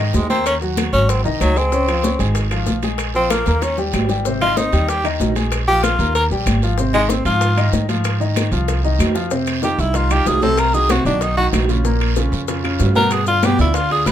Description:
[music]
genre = Afro-Cuban jazz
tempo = 190 BPM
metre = 4/4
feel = straight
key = Ab major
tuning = A4 = 439 Hz
[part]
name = clear tenor saxophone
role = melody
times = 0.0-14.1 s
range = Eb3 to B4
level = -18 LUFS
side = equal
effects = none
[part]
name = warm grand piano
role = accompaniment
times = 0.0-14.1 s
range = Bb2 to Db6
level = -22 LUFS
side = left 2 dB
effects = none
[part]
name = upright bass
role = bass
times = 0.0-14.1 s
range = Ab1 to Ab2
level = -19 LUFS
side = right 1 dB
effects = none
[part]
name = bongos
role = percussion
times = 0.1-14.1 s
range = none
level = -28 LUFS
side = left 7 dB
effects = none
[part]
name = congas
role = percussion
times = 0.1-14.1 s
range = none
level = -25 LUFS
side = left 1 dB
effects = none
[part]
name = guiro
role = percussion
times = 0.1-14.1 s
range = none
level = -33 LUFS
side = right 8 dB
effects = none
[part]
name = maracas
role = percussion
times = 0.1-14.1 s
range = none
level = -34 LUFS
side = left 8 dB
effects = none
[part]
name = timbales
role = percussion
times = 0.1-14.1 s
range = none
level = -27 LUFS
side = right 6 dB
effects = none
[part]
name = claves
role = percussion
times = 0.5-14.1 s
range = none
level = -31 LUFS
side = left 9 dB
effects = none
[sound]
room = light reverb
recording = minimal, uncompressed stereo recording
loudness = -15 LUFS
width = side -10 dB against mid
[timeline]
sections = 0.0-9.3 A section; 9.3-14.1 A section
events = tenor saxophone solo 0.0-14.1; drum fill 3.3-4.3, 8.7-9.3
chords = 0.5 Ebm; 1.1 Ab7; 1.7 Db6; 3.0 Bb5; 3.6 Eb; 4.3 Abmaj9; 5.5 Bb5; 6.2 Ebadd9; 6.8 Ab6; 9.3 F5; 10.6 Cdim; 11.2 Badd9; 11.9 Bbm; 13.1 G7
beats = 0.14 | 0.46 0.78 1.09 1.41 | 1.73 2.04 2.36 2.67 | 2.99 3.31 3.62 3.94 | 4.25 4.57 4.89 5.20 | 5.52 5.84 6.15 6.47 | 6.79 7.10 7.42 7.73 | 8.05 8.37 8.68 9.00 | 9.32 9.63 9.95 10.27 | 10.58 10.90 11.22 11.53 | 11.85 12.17 12.48 12.80 | 13.12 13.44 13.75 14.07

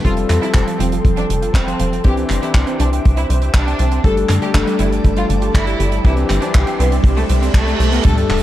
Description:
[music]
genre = italo disco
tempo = 120 BPM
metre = 4/4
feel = straight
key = unclear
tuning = A4 = 439 Hz
[part]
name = clear studio violin section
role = melody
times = 0.0-8.1 s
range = A3 to A4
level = -24 LUFS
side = equal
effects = digital delay
[part]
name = string machine, full ensemble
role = sustained chords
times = 0.0-8.4 s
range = G4 to D6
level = -26 LUFS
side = equal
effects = phaser, ensemble chorus
[part]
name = analog pluck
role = arpeggios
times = 0.0-8.4 s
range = C3 to C5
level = -24 LUFS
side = right 4 dB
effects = chorus, phaser, tape echo
[part]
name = warm electric grand piano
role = stabs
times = 0.0-8.4 s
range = E3 to A4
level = -22 LUFS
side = left 4 dB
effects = none
[part]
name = tight sequencer bass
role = bass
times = 0.0-8.4 s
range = D1 to G2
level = -18 LUFS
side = equal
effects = none
[part]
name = damped 70s drum kit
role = drums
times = 0.0-8.4 s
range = crash cymbal, handclaps, hi-hat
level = -25 LUFS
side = right 1 dB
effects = high-pass filter on hats, high-pass filter on cymbals, high-pass filter on snare, high-pass filter on room
[part]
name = kick drum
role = drums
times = 0.0-8.1 s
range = none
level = -13 LUFS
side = equal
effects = none
[part]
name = riser, reverse cymbal and sub drop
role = sound effects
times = 4.3-8.4 s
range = none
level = -28 LUFS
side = right 1 dB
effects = none
[sound]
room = light reverb, studio reverb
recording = dark, warm production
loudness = -13 LUFS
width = side -13 dB against mid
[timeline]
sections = 0.0-8.0 A section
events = filter sweep on string machine 0.0-8.0; reverse cymbal 7.0-8.0; impact 8.0-8.4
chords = 0.0 Fadd9; 2.0 Cadd9; 4.0 Gsus2; 6.0 Cadd9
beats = | 0.05 0.55 1.05 1.55 | 2.05 2.55 3.05 3.55 | 4.05 4.55 5.05 5.55 | 6.05 6.55 7.05 7.55 | 8.05

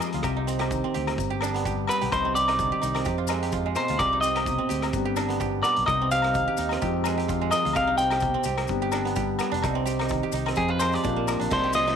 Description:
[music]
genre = highlife guitar band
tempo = 128 BPM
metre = 4/4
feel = swing 55% on 16ths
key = C harmonic minor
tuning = A4 = 440 Hz
[part]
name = mellow electric guitar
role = accompaniment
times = 0.0-12.0 s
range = F2 to G4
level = -32 LUFS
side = left 14 dB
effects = none
[part]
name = guzheng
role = arpeggios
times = 0.0-12.0 s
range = Ab3 to C5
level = -28 LUFS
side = right 9 dB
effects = slapback echo
[part]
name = agogo bells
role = percussion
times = 0.0-11.4 s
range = none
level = -35 LUFS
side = left 14 dB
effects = none
[part]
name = maracas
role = percussion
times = 0.0-11.9 s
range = none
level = -40 LUFS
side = left 14 dB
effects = none
[part]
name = fingered electric bass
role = bass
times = 0.1-12.0 s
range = F1 to F2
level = -31 LUFS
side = equal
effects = none
[part]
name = vintage drum kit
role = drums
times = 0.1-12.0 s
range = crash cymbal, hi-hat, kick drum, rim click, snare drum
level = -34 LUFS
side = equal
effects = none
[part]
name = clean electric guitar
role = melody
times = 1.9-12.0 s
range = Ab4 to G5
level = -25 LUFS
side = left 1 dB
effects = spring reverb
[sound]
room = light reverb, small room ambience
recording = 1960s-style stereo with parts hard left and right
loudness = -22 LUFS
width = side -7 dB against mid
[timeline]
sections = 0.0-11.5 A section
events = clean electric guitar solo 0.0-11.5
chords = 0.2 Cm; 1.2 G; 2.1 Cm; 3.1 Fmadd9; 4.0 Cm; 4.9 G; 5.9 Cm; 6.8 Fmadd9; 7.8 Cm; 8.7 G; 9.6 Cm; 10.6 Fmadd9; 11.0 Bb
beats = | 0.25 0.72 1.19 1.66 | 2.13 2.60 3.07 3.54 | 4.01 4.48 4.95 5.42 | 5.88 6.35 6.82 7.29 | 7.76 8.23 8.70 9.17 | 9.64 10.11 10.57 11.04 | 11.51

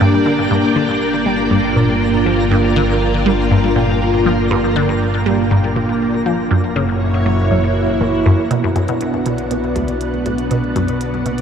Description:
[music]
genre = ambient, sequencer-driven space music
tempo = 120 BPM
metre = 4/4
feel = straight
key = G minor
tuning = A4 = 439 Hz
[part]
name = string machine, full ensemble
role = sustained chords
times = 0.0-11.4 s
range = Bb3 to G5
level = -16 LUFS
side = equal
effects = phaser, ensemble chorus, shimmer reverb
[part]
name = resonant blip pluck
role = riff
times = 0.0-11.4 s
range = D2 to G3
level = -18 LUFS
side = equal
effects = phaser, ping-pong delay
[part]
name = fat analog bass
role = bass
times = 0.0-11.4 s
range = F#1 to B1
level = -21 LUFS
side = equal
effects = none
[part]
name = twinkling granular texture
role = texture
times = 0.0-8.5 s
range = Bb4 to Bb5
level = -30 LUFS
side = equal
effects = built-in reverb, shimmer reverb
[part]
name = electronic hi-hat and percussion blips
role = percussion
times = 8.5-11.4 s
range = none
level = -32 LUFS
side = right 1 dB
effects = ping-pong delay
[sound]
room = wet huge ambient reverb, RT60 7.7 s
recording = dark, warm production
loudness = -14 LUFS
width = side -7 dB against mid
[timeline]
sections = 0.0-8.5 A section; 8.5-11.4 B section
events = none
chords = 0.0 Gm; 6.5 F#7; 8.5 Bm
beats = 0.01 | 0.51 1.01 1.51 2.01 | 2.51 3.01 3.51 4.01 | 4.51 5.01 5.51 6.01 | 6.51 7.01 7.51 8.01 | 8.51 9.01 9.51 10.01 | 10.51 11.01

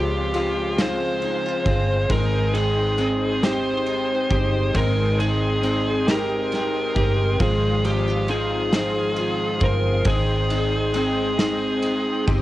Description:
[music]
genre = six-eight pop ballad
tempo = 45 BPM (dotted quarters)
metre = 6/8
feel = straight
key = Ab major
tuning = A4 = 443 Hz
[part]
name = fuzz lead guitar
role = melody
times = 0.0-12.2 s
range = G4 to C5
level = -24 LUFS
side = equal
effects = distortion, cassette tape, analog delay
[part]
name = nylon-string guitar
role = accompaniment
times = 0.0-12.4 s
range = Db3 to C5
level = -28 LUFS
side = equal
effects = double-tracked left and right
[part]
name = tonewheel organ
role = sustained chords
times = 0.0-12.4 s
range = Ab3 to Eb6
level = -32 LUFS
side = right 1 dB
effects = chorus vibrato, wide subtle chorus
[part]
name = direct-recorded clean electric guitar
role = arpeggios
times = 0.0-12.4 s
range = Ab2 to G4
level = -28 LUFS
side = left 3 dB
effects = ensemble chorus
[part]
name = vintage muted fingered electric bass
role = bass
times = 0.0-12.4 s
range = G1 to Db2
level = -25 LUFS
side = equal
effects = none
[part]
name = loose indie drum kit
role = drums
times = 0.3-12.4 s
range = kick drum, ride cymbal, snare drum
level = -28 LUFS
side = equal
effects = cassette tape
[sound]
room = light reverb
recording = home recording on cassette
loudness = -19 LUFS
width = side -15 dB against mid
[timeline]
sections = 0.0-12.4 A section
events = none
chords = 0.0 Dbmaj7; 2.1 Abmaj7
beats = 0.78 | 2.10 3.43 | 4.75 6.08 | 7.40 8.73 | 10.06 11.39

